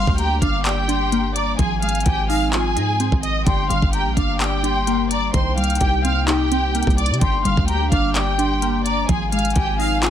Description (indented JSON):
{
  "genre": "hip hop, trap",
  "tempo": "128 BPM",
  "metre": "4/4",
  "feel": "half-time",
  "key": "G phrygian",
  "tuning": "A4 = 440 Hz",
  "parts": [
    { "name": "warm symphonic violin section", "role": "melody", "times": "0.0-10.1 s", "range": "G4 to F6", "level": "-23 LUFS", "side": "right 1 dB", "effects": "low-pass filter" },
    { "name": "mellow jazz flute", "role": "second line", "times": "0.0-10.1 s", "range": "G5 to D6", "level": "-28 LUFS", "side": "left 5 dB", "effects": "digital delay" },
    { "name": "glassy wavetable pluck", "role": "accompaniment", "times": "0.0-10.1 s", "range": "D3 to D5", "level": "-25 LUFS", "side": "equal", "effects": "chorus, low-pass filter" },
    { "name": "airy breathy pad", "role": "sustained chords", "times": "0.0-10.1 s", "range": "C3 to Eb4", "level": "-29 LUFS", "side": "left 1 dB", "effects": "chorus" },
    { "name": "hard-hitting 808-style bass", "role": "bass", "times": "0.0-10.1 s", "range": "G1 to C3", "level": "-23 LUFS", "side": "equal", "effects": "none" },
    { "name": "trap drum kit", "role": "drums", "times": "0.1-10.1 s", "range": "handclaps, hi-hat, kick drum", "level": "-22 LUFS", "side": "equal", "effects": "none" }
  ],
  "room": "light reverb",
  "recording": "none",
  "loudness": "-17 LUFS",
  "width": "side -10 dB against mid",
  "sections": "0.0-10.1 A section",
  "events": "none",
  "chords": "0.0 Gm; 1.6 Ab6; 3.5 Gm; 5.3 Cm7; 7.2 Gm; 9.1 Ab6"
}